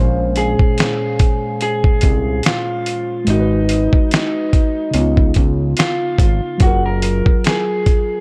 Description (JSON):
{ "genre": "lo-fi hip hop", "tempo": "72 BPM", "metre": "4/4", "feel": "swing 57% on 16ths", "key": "Bb minor", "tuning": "A4 = 444 Hz", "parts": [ { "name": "muted felt-like synth keys", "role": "accompaniment", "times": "0.0-8.2 s", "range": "Bb2 to F5", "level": "-24 LUFS", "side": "equal", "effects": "chorus" }, { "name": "fat analog bass", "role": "bass", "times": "0.0-7.2 s", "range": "Gb1 to Db2", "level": "-21 LUFS", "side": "equal", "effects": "none" }, { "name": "electric guitar through a small old amp", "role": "melody", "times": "0.4-8.2 s", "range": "Eb4 to Bb4", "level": "-23 LUFS", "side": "equal", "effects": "none" }, { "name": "dusty soul sampler-style drum kit", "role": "drums", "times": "0.4-8.1 s", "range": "finger snaps, hi-hat, kick drum, snare drum", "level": "-17 LUFS", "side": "equal", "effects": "vintage 12-bit sampler grit" } ], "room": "light reverb", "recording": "dark, warm production", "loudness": "-16 LUFS", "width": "mono", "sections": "0.0-8.2 A section", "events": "none", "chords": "0.0 Bbm9; 3.3 Abm7; 4.9 Db9; 6.6 Gbmaj9", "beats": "0.78 1.61 2.44 | 3.27 4.11 4.94 5.78 | 6.61 7.44" }